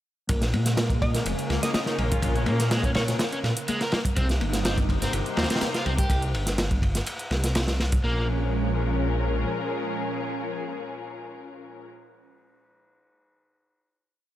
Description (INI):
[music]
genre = breakbeat, breaks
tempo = 124 BPM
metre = 4/4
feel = straight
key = Bb dorian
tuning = A4 = 439 Hz
[part]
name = phased analog pad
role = sustained chords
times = 0.3-11.9 s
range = Bb2 to Eb4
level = -33 LUFS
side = right 2 dB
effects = phaser, chorus, sidechain pumping
[part]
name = overdriven semi-hollow guitar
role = riff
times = 0.3-8.3 s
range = Ab3 to Bb4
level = -32 LUFS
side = equal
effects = tube saturation, low-pass filter, ping-pong delay
[part]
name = detuned saw bass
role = bass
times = 0.3-9.4 s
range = F1 to Bb2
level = -26 LUFS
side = equal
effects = none
[part]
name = crunchy breakbeat drum kit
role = drums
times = 0.3-8.0 s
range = kick drum, ride cymbal, snare drum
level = -27 LUFS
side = equal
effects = none
[part]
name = electronic hi-hat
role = drums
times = 0.3-8.0 s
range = none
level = -36 LUFS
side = right 2 dB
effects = overdrive
[part]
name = congas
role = percussion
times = 0.5-6.0 s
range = none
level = -35 LUFS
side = left 2 dB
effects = none
[part]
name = glassy wavetable pluck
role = melody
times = 1.0-3.6 s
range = Db5 to Eb5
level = -35 LUFS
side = equal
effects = chorus, small speaker sound, ping-pong delay
[part]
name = muted studio string section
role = stabs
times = 1.1-11.9 s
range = Db4 to C5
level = -33 LUFS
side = left 4 dB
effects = ping-pong delay
[sound]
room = small room ambience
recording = none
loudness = -23 LUFS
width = side -13 dB against mid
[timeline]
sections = 0.3-8.0 groove; 8.0-11.9 final chord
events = filter sweep on overdriven electric guitar 0.3-6.1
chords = 0.3 Bbm7; 4.2 Cm7; 8.0 Bbm7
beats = | 0.29 0.78 1.26 1.75 | 2.23 2.71 3.20 3.68 | 4.17 4.65 5.13 5.62 | 6.10 6.58 7.07 7.55 | 8.04 8.52 9.00 9.49 | 9.97 10.46 10.94 11.42